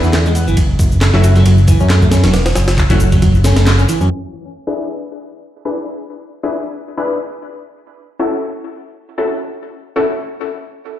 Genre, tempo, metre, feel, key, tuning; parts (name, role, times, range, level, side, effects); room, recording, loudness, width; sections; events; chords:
breakbeat, breaks; 136 BPM; 4/4; swing 55% on 16ths; F# minor; A4 = 441 Hz
electric guitar at the edge of break-up; riff; 0.0-4.1 s; E3 to C#4; -18 LUFS; right 1 dB; vintage 12-bit sampler grit, low-pass filter, ping-pong delay
orchestra-hit-like synth stab; stabs; 0.0-10.0 s; A3 to B4; -20 LUFS; left 2 dB; built-in reverb, ping-pong delay
fat analog bass; bass; 0.0-4.1 s; E1 to F#2; -12 LUFS; equal; tube saturation
breakbeat sampler-style drum kit; drums; 0.0-4.0 s; kick drum, ride cymbal, snare drum; -15 LUFS; equal
electronic shaker and handclaps; drums; 0.0-4.1 s; -24 LUFS; equal; low-pass filter on snare, low-pass filter on perc, low-pass filter on room
light reverb; played on a big sound system in a bare room, stone room reverb, low-pass filter; -12 LUFS; side -12 dB against mid
0.0-4.1 A section; 4.1-11.0 B section
band accent 3.7; filter sweep 4.1-11.0
0.0 E; 0.6 F#m7; 4.1 E7; 7.6 F#m7